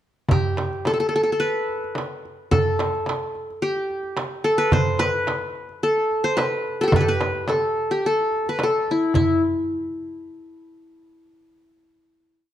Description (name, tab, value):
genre	Arabic maqam ensemble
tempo	108 BPM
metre	4/4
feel	straight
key	unclear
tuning	A4 = 438 Hz
part	qanun	melody	0.3-9.4 s	E4 to C5	-21 LUFS	left 1 dB	none
part	darbuka	percussion	0.3-9.4 s	none	-25 LUFS	right 4 dB	none
part	frame drum	percussion	0.3-9.4 s	none	-26 LUFS	left 1 dB	none
room	moderate recital hall reverb, RT60 1.4 s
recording	dark, warm production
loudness	-20 LUFS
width	side -11 dB against mid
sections	0.3-9.1 A section; 9.1-11.4 final note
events	none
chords	none